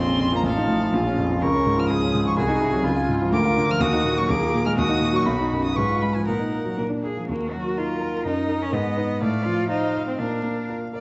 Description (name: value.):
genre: quick classical-period movement for piano quartet.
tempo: 124 BPM.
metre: 2/4.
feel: straight.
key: Eb minor from 3.3 s.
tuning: A4 = 440 Hz.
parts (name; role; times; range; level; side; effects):
rich violin; melody; 0.0-11.0 s; Gb4 to F6; -30 LUFS; equal; none.
rich cello; second line; 0.0-10.7 s; A3 to Cb5; -30 LUFS; equal; none.
clear concert grand piano; accompaniment; 0.0-11.0 s; A1 to C5; -25 LUFS; equal; none.
rich viola; accompaniment; 0.0-11.0 s; F3 to F5; -35 LUFS; equal; none.
room: wet recital hall reverb, RT60 1.5 s.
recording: vinyl crackle, nothing above 7.9 kHz.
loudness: -23 LUFS.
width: mono.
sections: 0.0-7.3 A section; 7.3-11.0 B section.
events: none.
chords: 0.5 F7/A; 0.9 Bbm; 1.4 Db; 2.4 Ab7/C; 2.9 Db; 3.3 Bb/D; 3.8 Ebm; 4.3 Bb7/Eb; 4.8 Ebm; 5.3 B; 5.8 Fdim/Ab; 6.3 Ebm/Bb; 6.8 Bb; 7.3 Ebm; 8.3 Ebm/Gb; 8.7 Abm; 9.2 F/A; 10.2 Bb.